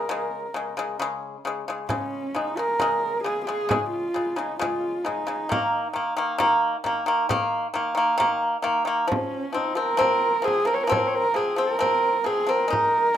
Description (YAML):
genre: mongolian traditional, Mongolian folk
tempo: 67 BPM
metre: 4/4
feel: straight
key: unclear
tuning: A4 = 439 Hz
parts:
  - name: dark horsehead fiddle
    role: melody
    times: 0.0-13.2 s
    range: Db4 to Db5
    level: -25 LUFS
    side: right 2 dB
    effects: plate reverb
  - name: pipa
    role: arpeggios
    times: 0.0-13.2 s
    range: Db3 to Eb4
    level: -24 LUFS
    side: left 1 dB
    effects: plate reverb
  - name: frame drum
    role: percussion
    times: 1.9-12.9 s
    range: none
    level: -31 LUFS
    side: right 2 dB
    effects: none
room: wet small room reverb, RT60 0.5 s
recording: rough home demo mix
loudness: -22 LUFS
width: side -10 dB against mid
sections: 0.0-1.9 A section; 1.9-13.2 B section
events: none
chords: 0.0 Db5; 5.5 Eb5; 9.1 F5